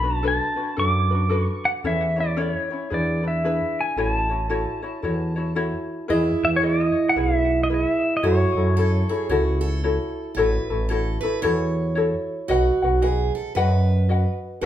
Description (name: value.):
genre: Hawaiian.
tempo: 113 BPM.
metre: 4/4.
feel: swing 62% on 8ths.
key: A major, E major from 6.1 s.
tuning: A4 = 440 Hz.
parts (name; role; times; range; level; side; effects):
pedal steel guitar; melody; 0.0-9.8 s; C#5 to D6; -24 LUFS; left 1 dB; tape echo.
ukulele; accompaniment; 0.0-14.7 s; C#4 to F#5; -26 LUFS; left 3 dB; none.
growling FM bass; bass; 0.0-14.7 s; A1 to F#2; -24 LUFS; equal; none.
picked steel-string acoustic guitar; second line; 6.1-14.7 s; E4 to C#5; -25 LUFS; right 5 dB; none.
room: moderate large studio reverb, RT60 0.9 s.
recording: band playing live in one room.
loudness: -20 LUFS.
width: side -11 dB against mid.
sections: 0.0-6.1 A section; 6.1-14.7 B section.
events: none.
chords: 0.0 Bm7; 1.8 A/E; 2.9 E7; 4.0 A6; 6.1 Emaj7; 8.2 F#m7; 10.4 A6; 12.5 B.